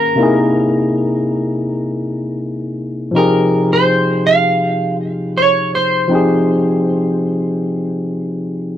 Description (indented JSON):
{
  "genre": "R&B",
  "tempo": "81 BPM",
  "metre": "4/4",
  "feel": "swing 55% on 16ths",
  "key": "F minor from 3.1 s",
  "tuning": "A4 = 439 Hz",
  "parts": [
    { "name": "clean electric guitar", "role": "melody", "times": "0.0-7.2 s", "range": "Bb4 to F5", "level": "-16 LUFS", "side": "right 1 dB", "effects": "lush chorus" },
    { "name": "overdriven tine electric piano", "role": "accompaniment", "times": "0.0-8.8 s", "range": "C3 to G#4", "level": "-15 LUFS", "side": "left 1 dB", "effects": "none" }
  ],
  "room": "moderate booth ambience, RT60 0.2 s",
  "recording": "dry, close 1970s-style studio recording",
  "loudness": "-13 LUFS",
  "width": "side -11 dB against mid",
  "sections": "0.0-3.1 A section; 3.1-8.8 B section",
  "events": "none",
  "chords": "0.2 C7alt; 3.1 Fm9"
}